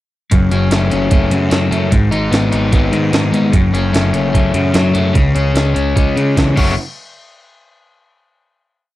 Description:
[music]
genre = indie rock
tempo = 148 BPM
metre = 4/4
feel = straight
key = F# dorian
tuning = A4 = 440 Hz
[part]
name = crunchy overdriven guitar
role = riff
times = 0.3-6.7 s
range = F#2 to F#4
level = -15 LUFS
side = left 3 dB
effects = none
[part]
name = fuzz picked electric bass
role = bass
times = 0.3-6.8 s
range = F#1 to C#3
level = -17 LUFS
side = right 1 dB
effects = overdrive
[part]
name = breakbeat sampler-style drum kit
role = drums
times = 0.3-6.7 s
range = crash cymbal, hi-hat, kick drum, snare drum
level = -16 LUFS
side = right 1 dB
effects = none
[sound]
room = light reverb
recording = dark, warm production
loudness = -12 LUFS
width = side -16 dB against mid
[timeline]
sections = 0.3-6.8 interlude; 6.8-8.4 final hit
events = none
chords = 0.3 F#m; 1.9 G#m; 3.5 F#m; 5.2 C#m; 6.6 F#m; 6.8 N.C.

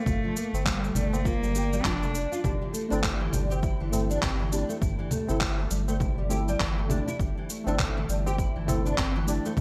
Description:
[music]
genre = organic downtempo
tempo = 101 BPM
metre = 4/4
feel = swing 60% on 16ths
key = unclear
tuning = A4 = 440 Hz
[part]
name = warm cello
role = melody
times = 0.0-2.4 s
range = G3 to D4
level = -34 LUFS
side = equal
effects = delay
[part]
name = nylon-string guitar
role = arpeggios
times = 0.1-9.6 s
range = E3 to G4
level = -35 LUFS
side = equal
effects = ensemble chorus, delay
[part]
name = round analog bass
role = bass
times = 0.1-9.6 s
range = F1 to G1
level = -32 LUFS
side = equal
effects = sidechain pumping
[part]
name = electronic congas, shaker and handclaps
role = drums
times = 0.1-9.6 s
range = none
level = -34 LUFS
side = equal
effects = gated reverb
[part]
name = electronic kick drum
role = drums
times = 0.1-9.6 s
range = none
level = -34 LUFS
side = equal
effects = overdrive
[part]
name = tabla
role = percussion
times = 0.1-9.6 s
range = none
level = -42 LUFS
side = equal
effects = none
[part]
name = bronze singing bowl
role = texture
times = 2.4-9.6 s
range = G4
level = -48 LUFS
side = equal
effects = none
[part]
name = deep mellow chord stab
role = accompaniment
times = 2.9-9.5 s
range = A3 to A4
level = -38 LUFS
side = equal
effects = chorus, sidechain pumping, delay
[sound]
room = light reverb, small room ambience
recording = bright 1980s-style digital production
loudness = -27 LUFS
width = mono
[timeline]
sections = 0.0-9.6 A section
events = none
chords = 0.0 Gm7; 2.4 Am/G

